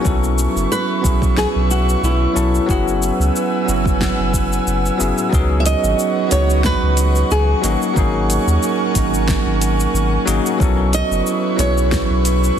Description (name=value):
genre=sunset chillout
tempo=91 BPM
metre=4/4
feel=swing 54% on 16ths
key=C# minor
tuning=A4 = 445 Hz
part: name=bell-like tine electric piano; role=accompaniment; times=0.0-12.6 s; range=F#3 to A4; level=-20 LUFS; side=moving between left 5 dB and right 8 dB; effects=auto-pan, digital delay
part: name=airy breathy pad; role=sustained chords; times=0.0-12.6 s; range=E4 to E6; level=-23 LUFS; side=equal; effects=chorus, vintage 12-bit sampler grit
part: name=warm sub bass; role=bass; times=0.1-12.6 s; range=F#1 to D#2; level=-18 LUFS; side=equal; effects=none
part: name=deep house drum kit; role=drums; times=0.1-12.6 s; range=cabasa, hi-hat, snare drum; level=-26 LUFS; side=left 1 dB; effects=none
part: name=electronic kick drum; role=drums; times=0.1-12.1 s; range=none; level=-20 LUFS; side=equal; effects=none
part: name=flamenco guitar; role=melody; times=0.7-12.5 s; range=E4 to E5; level=-22 LUFS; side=right 1 dB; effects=ping-pong delay
room=light reverb, digital ambience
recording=dense, heavily limited modern master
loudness=-14 LUFS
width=side -9 dB against mid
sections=0.0-5.3 A section; 5.3-12.6 B section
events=none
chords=0.1 B9sus4; 2.7 F#9sus4; 5.3 C#9sus4; 7.6 G#9sus4; 10.6 B9sus4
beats=| 0.05 0.71 1.37 2.03 | 2.69 3.35 4.01 4.67 | 5.33 5.99 6.65 7.31 | 7.97 8.63 9.29 9.94 | 10.60 11.26 11.92 12.58